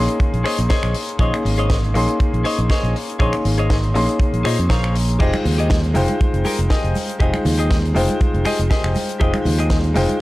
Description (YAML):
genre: nu-disco, nu disco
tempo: 120 BPM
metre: 4/4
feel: swing 54% on 16ths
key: F minor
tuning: A4 = 442 Hz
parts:
  - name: clear baby grand piano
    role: accompaniment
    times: 0.0-10.2 s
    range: Ab3 to C6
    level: -22 LUFS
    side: left 1 dB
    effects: sidechain pumping, analog delay
  - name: modern bright fingered electric bass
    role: bass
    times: 0.0-10.1 s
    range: F1 to Bb2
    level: -19 LUFS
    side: equal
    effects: none
  - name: clean electric guitar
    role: riff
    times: 0.1-10.1 s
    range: G4 to Bb5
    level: -26 LUFS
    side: left 2 dB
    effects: wide subtle chorus, low-pass filter, analog delay
  - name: tight funk drum kit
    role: drums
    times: 0.1-10.2 s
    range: crash cymbal, finger snaps, hi-hat, snare drum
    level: -28 LUFS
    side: left 1 dB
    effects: none
  - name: kick drum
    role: drums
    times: 0.2-9.8 s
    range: none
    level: -18 LUFS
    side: equal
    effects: none
  - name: egg shaker and congas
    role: percussion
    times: 5.2-10.2 s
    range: none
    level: -28 LUFS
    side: right 3 dB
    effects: none
room: light reverb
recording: dry, gritty hardware recording, cassette tape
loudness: -16 LUFS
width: side -18 dB against mid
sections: 0.0-10.2 A section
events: clean electric guitar fill 4.5-5.2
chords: 0.0 Bbm11; 5.2 Fm9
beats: 0.20 0.70 | 1.20 1.70 2.20 2.70 | 3.20 3.70 4.20 4.70 | 5.20 5.70 6.20 6.70 | 7.20 7.70 8.20 8.70 | 9.20 9.70 10.20